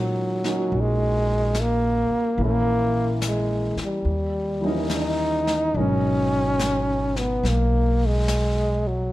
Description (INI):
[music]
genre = jazz ballad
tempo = 72 BPM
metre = 4/4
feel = swing 66% on 8ths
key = unclear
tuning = A4 = 440 Hz
[part]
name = warm trombone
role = melody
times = 0.0-9.1 s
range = Gb3 to Eb4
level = -23 LUFS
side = equal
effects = none
[part]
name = warm concert grand piano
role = accompaniment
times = 0.0-9.1 s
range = Cb3 to Bb4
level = -28 LUFS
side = equal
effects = none
[part]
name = upright bass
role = bass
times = 0.0-9.1 s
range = Ab1 to Bb2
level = -25 LUFS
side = equal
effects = none
[part]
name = vintage brush drum kit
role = drums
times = 0.4-9.1 s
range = brushed snare drum, hi-hat, snare drum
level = -34 LUFS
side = left 3 dB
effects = none
[sound]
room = light reverb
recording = none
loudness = -20 LUFS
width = side -16 dB against mid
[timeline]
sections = 0.0-5.8 A section; 5.8-9.1 B section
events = none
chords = 0.0 Ebm11; 2.4 Bbdim; 4.1 Eb7b9; 5.8 Abm7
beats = 0.72 1.55 | 2.39 3.22 4.06 4.91 | 5.76 6.60 7.44 8.28 | 9.12